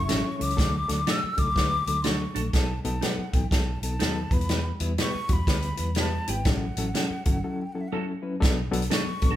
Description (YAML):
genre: uptempo 1960s-style soul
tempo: 122 BPM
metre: 4/4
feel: swing 62% on 8ths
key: unclear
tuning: A4 = 442 Hz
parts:
  - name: breathy concert flute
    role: melody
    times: 0.0-9.4 s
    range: E5 to E6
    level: -32 LUFS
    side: left 2 dB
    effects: none
  - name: electric guitar through a small old amp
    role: riff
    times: 0.0-0.6 s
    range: E3 to E4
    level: -35 LUFS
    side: left 4 dB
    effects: tremolo
  - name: vintage muted fingered electric bass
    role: bass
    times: 0.0-9.4 s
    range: G1 to E2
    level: -30 LUFS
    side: equal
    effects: none
  - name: bright reed electric piano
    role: accompaniment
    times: 0.1-9.3 s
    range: F#3 to B4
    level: -31 LUFS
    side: left 2 dB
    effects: overdrive, fast tremolo
  - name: clean electric guitar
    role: stabs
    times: 0.1-9.4 s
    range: C#4 to B4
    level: -35 LUFS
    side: right 7 dB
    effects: spring reverb
  - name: natural country drum kit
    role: drums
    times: 0.1-9.3 s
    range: hi-hat, kick drum, snare drum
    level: -26 LUFS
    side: equal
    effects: none
room: moderate large studio reverb, RT60 0.9 s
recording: band playing live in one room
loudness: -23 LUFS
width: side -12 dB against mid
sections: 0.0-8.4 A section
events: break 7.4-8.4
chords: 0.0 A6; 0.6 D; 2.5 B7; 4.2 Em; 6.5 A6; 8.4 Bm7